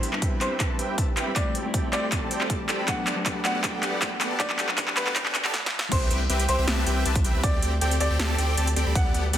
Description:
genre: future bass.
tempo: 158 BPM.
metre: 4/4.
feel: half-time.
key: G major.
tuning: A4 = 440 Hz.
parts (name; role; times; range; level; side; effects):
bright grand piano; melody; 0.0-9.1 s; B4 to F#5; -33 LUFS; equal; sidechain pumping, tape echo.
mellow electric guitar; accompaniment; 0.0-5.5 s; F#3 to E4; -35 LUFS; left 3 dB; lush chorus, sidechain pumping, tape echo.
airy breathy pad; sustained chords; 0.4-9.4 s; D3 to C6; -41 LUFS; equal; none.
big bright polysynth; riff; 0.0-9.4 s; B3 to B5; -29 LUFS; equal; sidechain pumping.
saturated sub bass; bass; 0.0-9.4 s; C2 to D2; -29 LUFS; equal; sidechain pumping, high-pass filter.
big-room dance drum kit; drums; 0.0-9.4 s; crash cymbal, handclaps, hi-hat, snare drum; -27 LUFS; equal; soft clipping on snare.
riser; sound effects; 0.0-5.5 s; none; -45 LUFS; right 1 dB; none.
electronic kick drum; drums; 0.2-9.0 s; none; -27 LUFS; equal; none.
room: light reverb.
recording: dense, heavily limited modern master, high-pass filter.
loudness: -22 LUFS.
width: side -11 dB against mid.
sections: 0.0-5.9 A section; 5.9-9.4 B section.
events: build-up 0.0-5.9; drum fill 0.0-5.5, 5.5-5.9; filter sweep on analog polysynth 0.0-5.9; filter sweep 0.0-5.9; drop 5.9-9.4.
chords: 0.0 Cmaj7; 1.4 D7sus4; 2.9 Gmaj9/D; 5.9 Cmaj7; 7.4 D7sus4.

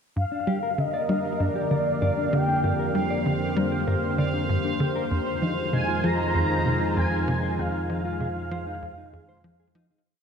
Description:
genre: ambient, sequencer-driven space music.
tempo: 97 BPM.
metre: 4/4.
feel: straight.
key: F dorian.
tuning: A4 = 440 Hz.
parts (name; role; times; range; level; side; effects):
expressive portamento lead; melody; 0.2-9.7 s; D5 to Bb5; -29 LUFS; equal; ensemble chorus, tape echo.
lush unison pad; sustained chords; 0.2-10.0 s; D3 to C5; -29 LUFS; equal; chorus.
tight sequencer bass; riff; 0.2-9.9 s; F2 to G3; -28 LUFS; equal; analog chorus, tape echo.
analog drone; bass; 1.1-10.0 s; F2; -32 LUFS; equal; chorus, tube saturation.
bubbling stepped-filter texture; texture; 0.2-10.1 s; F5; -36 LUFS; right 4 dB; chorus, built-in reverb.
mellow electric guitar; arpeggios; 0.3-10.0 s; D4 to D5; -34 LUFS; moving between left 6 dB and right 4 dB; auto-pan, tape echo.
room: wet cathedral reverb, RT60 5.4 s.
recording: in a vast, echoing space, cassette tape.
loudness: -23 LUFS.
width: side -6 dB against mid.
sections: 0.2-10.1 A section.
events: filter sweep on analog synth bass 0.2-10.1; fade-out 6.8-10.1.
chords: 0.2 Gm/F; 5.1 Fm7.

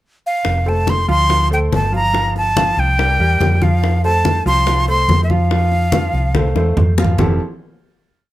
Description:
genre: Afro-Cuban jazz.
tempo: 143 BPM.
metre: 4/4.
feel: straight.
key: F major.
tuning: A4 = 438 Hz.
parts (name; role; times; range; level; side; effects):
breathy bright jazz flute; melody; 0.3-6.8 s; E5 to C6; -18 LUFS; equal; none.
bongos; percussion; 0.4-7.3 s; none; -25 LUFS; left 5 dB; none.
hollow-body short-scale fingered electric bass; bass; 0.5-7.4 s; F1 to F2; -17 LUFS; equal; none.
congas; percussion; 0.5-7.3 s; none; -21 LUFS; left 1 dB; none.
warm grand piano; accompaniment; 0.7-7.4 s; F3 to F5; -22 LUFS; equal; none.
room: light reverb.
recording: none.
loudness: -13 LUFS.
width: side -15 dB against mid.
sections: 0.0-0.4 pickup bar; 0.4-7.2 A section; 7.2-8.3 final chord.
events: drum fill 6.4-7.2.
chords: 0.4 F; 1.3 Dm7; 2.1 Gm11; 3.0 C7; 3.8 F; 7.2 Fmaj9.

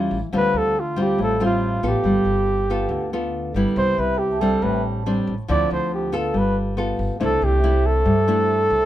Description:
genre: bossa nova.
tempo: 140 BPM.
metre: 4/4.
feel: straight.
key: C major.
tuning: A4 = 439 Hz.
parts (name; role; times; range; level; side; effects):
nylon-string guitar; accompaniment; 0.0-8.9 s; A2 to A4; -22 LUFS; left 1 dB; none.
upright bass; bass; 0.0-8.8 s; G1 to G2; -25 LUFS; equal; none.
mellow flugelhorn; melody; 0.4-8.9 s; F4 to D5; -21 LUFS; right 1 dB; none.
vibraphone with medium hard mallets; accompaniment; 4.0-8.9 s; C5 to A5; -29 LUFS; right 4 dB; none.
room: light reverb.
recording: minimal, uncompressed stereo recording.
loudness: -18 LUFS.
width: side -13 dB against mid.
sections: 0.0-8.9 A section.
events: none.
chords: 0.3 Dm7; 2.0 G9; 3.8 Cmaj7; 4.6 Am7; 5.5 Dm9; 6.3 G9; 7.2 C69.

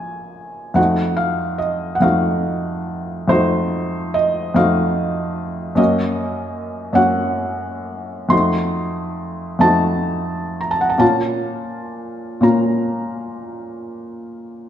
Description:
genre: classical, romantic nocturne for solo piano.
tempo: 41-52 BPM (dotted quarters).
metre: 12/8.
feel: rubato.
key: unclear.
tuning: A4 = 440 Hz.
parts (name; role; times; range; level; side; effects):
felt-muted upright piano; solo; 0.0-14.7 s; Bb1 to C6; -17 LUFS; equal; none.
room: wet recital hall reverb, RT60 1.7 s.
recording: none.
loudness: -16 LUFS.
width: side -10 dB against mid.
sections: 0.0-14.7 A section.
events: none.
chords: 0.0 Bbm; 0.8 F7b9; 5.8 Gb; 8.3 F7b9; 11.0 Bbm.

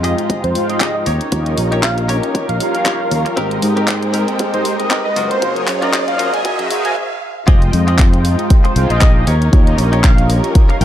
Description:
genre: nu-disco, nu disco.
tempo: 117 BPM.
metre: 4/4.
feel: swing 56% on 16ths.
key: F minor.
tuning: A4 = 440 Hz.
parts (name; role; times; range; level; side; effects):
mellow synth brass; accompaniment; 0.0-10.8 s; Gb3 to G5; -21 LUFS; equal; chorus, sidechain pumping, analog delay.
dark symphonic violin section; sustained chords; 0.0-10.8 s; Ab3 to G5; -26 LUFS; left 1 dB; sidechain pumping.
direct-recorded clean electric guitar; riff; 0.0-10.8 s; C4 to G5; -24 LUFS; left 2 dB; wide subtle chorus, low-pass filter.
overdriven fingered electric bass; bass; 0.0-10.8 s; F1 to Ab2; -17 LUFS; equal; tube saturation, sidechain pumping.
pop drum kit; drums; 0.0-10.8 s; handclaps, hi-hat; -21 LUFS; left 1 dB; studio reverb.
riser; sound effects; 2.6-7.0 s; none; -26 LUFS; right 3 dB; none.
electronic kick drum; drums; 0.3-10.7 s; none; -12 LUFS; equal; high-pass filter on kick, studio reverb.
wide unison lead; melody; 0.4-10.8 s; C5 to Ab5; -22 LUFS; equal; analog delay.
room: light reverb.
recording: dark, warm production, high-pass filter.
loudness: -12 LUFS.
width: side -11 dB against mid.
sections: 0.0-7.5 A section; 7.5-10.8 B section.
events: build-up 0.0-7.5; riser 2.6-7.0; stop 7.0-7.5; drop 7.5-10.8; clean electric guitar fill 10.6.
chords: 0.0 Fm9; 1.1 Eb7; 3.4 Abmaj9; 5.2 Gbmaj7; 7.5 Fm9; 9.3 Eb7.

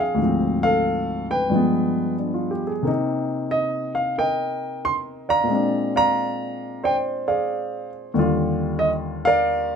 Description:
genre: solo jazz.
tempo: 90 BPM.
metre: 4/4.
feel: swing 67% on 8ths.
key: unclear.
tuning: A4 = 443 Hz.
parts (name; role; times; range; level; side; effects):
warm baby grand piano; solo; 0.0-9.8 s; D2 to C6; -20 LUFS; equal; none.
room: moderate small room reverb, RT60 0.6 s.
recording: close, detailed microphones.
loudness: -20 LUFS.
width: side -6 dB against mid.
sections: 0.0-2.8 A section; 2.8-9.8 B section.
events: none.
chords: 0.2 Dm7b5; 1.5 G7b9; 2.8 Cm7; 5.5 Bb9; 8.1 Ebmaj9.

